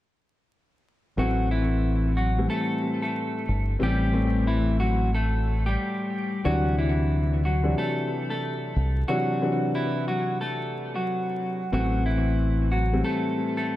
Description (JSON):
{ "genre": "hip hop, boom-bap hip-hop", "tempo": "91 BPM", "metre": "4/4", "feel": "swing 63% on 16ths", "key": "A dorian", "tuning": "A4 = 440 Hz", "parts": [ { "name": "clean electric guitar", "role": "melody", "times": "1.2-13.8 s", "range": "E3 to A4", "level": "-28 LUFS", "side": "equal", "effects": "high-pass filter, low-pass filter, tape echo" }, { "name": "dark baby grand piano", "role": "accompaniment", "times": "1.2-13.8 s", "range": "A2 to D4", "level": "-28 LUFS", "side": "left 2 dB", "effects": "high-pass filter, low-pass filter, tape echo" }, { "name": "deep dub fingered electric bass", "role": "bass", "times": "1.2-13.0 s", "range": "G1 to D2", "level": "-24 LUFS", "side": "equal", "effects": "none" } ], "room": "light reverb", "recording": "echo-heavy mix, vinyl crackle", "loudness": "-23 LUFS", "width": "side -14 dB against mid", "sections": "1.2-13.8 A section", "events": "break 9.1-11.7", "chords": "1.2 Am7; 6.5 D9; 11.7 Am7" }